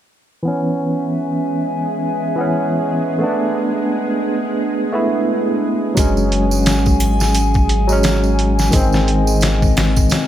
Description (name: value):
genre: trip hop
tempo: 87 BPM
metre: 4/4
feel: swing 59% on 16ths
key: C# phrygian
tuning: A4 = 441 Hz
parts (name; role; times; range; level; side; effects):
- barky tine electric piano; accompaniment; 0.4-10.3 s; D#3 to E4; -18 LUFS; equal; harmonic tremolo, low-pass filter, tape echo
- bowed-like drone; texture; 1.1-10.3 s; G#3 to G#4; -27 LUFS; equal; built-in reverb
- warbly tape-like pad; sustained chords; 0.8-10.3 s; B#3 to G#5; -23 LUFS; equal; chorus, built-in reverb
- soft dub sub bass; bass; 6.0-10.1 s; F#1 to G#1; -18 LUFS; equal; none
- trip hop sampler-style drum kit; drums; 6.0-10.3 s; hi-hat, kick drum, snare drum; -17 LUFS; equal; none
- tambourine and triangle; percussion; 6.0-10.3 s; none; -28 LUFS; right 5 dB; none
room: light reverb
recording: none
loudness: -14 LUFS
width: side -11 dB against mid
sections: 0.5-10.3 A section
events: filter sweep on tine electric piano 0.5-10.3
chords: 0.5 C#m7; 3.2 Bm7; 6.0 F#sus2; 8.7 G#